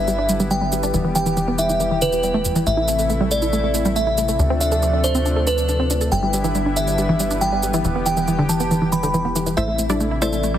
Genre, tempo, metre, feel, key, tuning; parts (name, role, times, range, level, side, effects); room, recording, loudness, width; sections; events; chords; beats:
uplifting trance; 139 BPM; 4/4; straight; A minor; A4 = 441 Hz
glassy synth bell; second line; 0.0-10.6 s; B4 to B5; -22 LUFS; equal; chorus, tape echo
lush unison pad; sustained chords; 0.0-10.6 s; C3 to G4; -25 LUFS; left 1 dB; chorus
tight sequencer bass; bass; 0.0-10.6 s; E1 to D2; -24 LUFS; equal
wide unison pluck; arpeggios; 0.1-10.6 s; E2 to A4; -23 LUFS; right 1 dB; tape echo
shaker; drums; 0.1-10.5 s; -29 LUFS; right 2 dB
wide unison pluck; melody; 9.6-10.5 s; D4 to E5; -24 LUFS; left 1 dB; tape echo
light reverb, digital ambience; heavily compressed radio sound, multiband compression; -17 LUFS; side -11 dB against mid
0.0-10.6 A section
0.0 G6; 0.9 Em; 2.7 Am; 4.4 Dm7; 6.1 G6; 7.8 Em; 9.6 Am
0.08 0.51 | 0.94 1.37 1.80 2.23 | 2.67 3.10 3.53 3.96 | 4.39 4.82 5.26 5.69 | 6.12 6.55 6.98 7.41 | 7.85 8.28 8.71 9.14 | 9.57 10.00 10.44